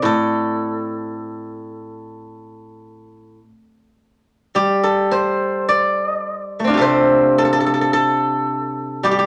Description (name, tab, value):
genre	chinese traditional, Chinese solo plucked strings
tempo	54 BPM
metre	4/4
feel	rubato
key	A jue mode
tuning	A4 = 444 Hz
part	steel-string zither	solo	0.0-9.3 s	A2 to D5	-19 LUFS	equal	none
room	wet club reverb, RT60 0.5 s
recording	none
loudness	-18 LUFS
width	mono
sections	0.0-4.6 A section; 4.6-9.3 B section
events	none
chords	none